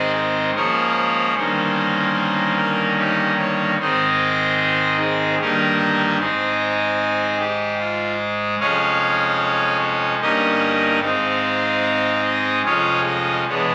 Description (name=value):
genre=classical, chorale-style piece for pipe organ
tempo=74 BPM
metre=3/4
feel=rubato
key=Ab major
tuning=A4 = 440 Hz
part: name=pipe organ, trumpet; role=solo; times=0.0-13.7 s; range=E1 to F5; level=-19 LUFS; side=equal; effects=none
room=wet stone room reverb, RT60 1.1 s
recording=recorded on a phone in the room, studio ambience, compression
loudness=-19 LUFS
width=mono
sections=0.0-13.7 A section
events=none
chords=0.0 Ab; 0.6 Bbm7/Ab; 1.4 Eb7/G; 3.8 Ab; 5.4 Eb/G; 6.2 Ab; 8.6 Db/F; 10.2 Eb7/G; 11.0 Ab; 12.7 Db/F